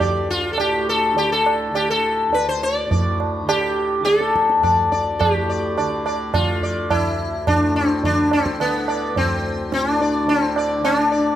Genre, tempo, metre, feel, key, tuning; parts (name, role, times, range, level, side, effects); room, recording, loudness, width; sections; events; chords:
indian classical, Hindustani; 105 BPM; 4/4; straight; D raga bhimpalasi; A4 = 441 Hz
sitar; melody; 0.0-11.4 s; B3 to D5; -19 LUFS; left 1 dB
tanpura; drone; 0.0-11.4 s; D2 to D3; -28 LUFS; left 1 dB
tabla; percussion; 0.0-11.1 s; -23 LUFS; right 3 dB
moderate recital hall reverb, RT60 1.5 s; -17 LUFS; side -11 dB against mid
0.0-5.2 A section; 5.2-11.4 B section
speeding up 0.0-11.4